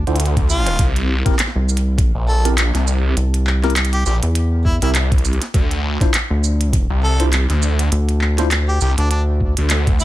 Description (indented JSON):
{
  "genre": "glitch hop",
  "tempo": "101 BPM",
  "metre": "4/4",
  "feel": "swing 57% on 16ths",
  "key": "D minor",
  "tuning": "A4 = 440 Hz",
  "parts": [
    { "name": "rubbery square bass", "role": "bass", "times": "0.0-9.5 s", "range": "C2 to E2", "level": "-16 LUFS", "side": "equal", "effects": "none" },
    { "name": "tine electric piano", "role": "stabs", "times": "0.1-8.5 s", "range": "C4 to C5", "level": "-25 LUFS", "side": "equal", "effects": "medium stereo tremolo, sidechain pumping, dub echo" },
    { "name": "phased detuned saw bass", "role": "bass", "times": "0.1-10.0 s", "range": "Bb1 to D2", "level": "-16 LUFS", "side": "equal", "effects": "phaser, tube saturation" },
    { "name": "glitchy drum kit", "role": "drums", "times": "0.1-10.0 s", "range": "handclaps, hi-hat, shaker, snare drum", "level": "-22 LUFS", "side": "right 1 dB", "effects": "small room ambience" },
    { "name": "electronic kick drum", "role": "drums", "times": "0.4-10.0 s", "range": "none", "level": "-18 LUFS", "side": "equal", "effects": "small room ambience" },
    { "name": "clear harmonica", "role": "melody", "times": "0.5-10.0 s", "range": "D4 to A4", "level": "-26 LUFS", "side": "equal", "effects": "dub echo" }
  ],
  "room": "little or no reverb",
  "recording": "none",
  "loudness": "-15 LUFS",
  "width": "side -15 dB against mid",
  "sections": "0.0-10.0 A section",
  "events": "none",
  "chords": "0.0 Dm; 0.8 C7; 5.5 D7(no3)",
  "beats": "0.20 | 0.79 1.39 1.98 2.58 | 3.17 3.76 4.36 4.95 | 5.55 6.14 6.73 7.33 | 7.92 8.52 9.11 9.71"
}